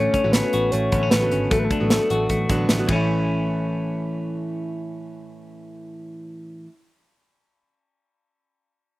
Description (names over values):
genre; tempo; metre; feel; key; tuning
jangly indie pop; 153 BPM; 4/4; straight; A major; A4 = 440 Hz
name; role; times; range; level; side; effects
soft octave-layered synth lead; melody; 0.0-2.7 s; A4 to C#5; -23 LUFS; left 1 dB; chorus, slapback echo
fingerpicked plugged-in steel-string acoustic guitar; accompaniment; 0.0-6.7 s; A2 to F#4; -28 LUFS; right 3 dB; none
clean electric guitar; arpeggios; 0.0-6.7 s; E3 to A4; -27 LUFS; left 2 dB; slapback echo
vintage muted picked electric bass; bass; 0.0-6.6 s; G#1 to A1; -26 LUFS; equal; none
modern studio drum kit; drums; 0.1-3.0 s; hi-hat, kick drum, ride cymbal, snare drum; -22 LUFS; equal; none
room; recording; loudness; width
little or no reverb; recorded outdoors, with no room sound; -19 LUFS; side -18 dB against mid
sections
0.0-3.1 A section; 3.1-6.2 B section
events
none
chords
0.0 Dmaj7/A; 1.5 Bm7/A; 2.9 A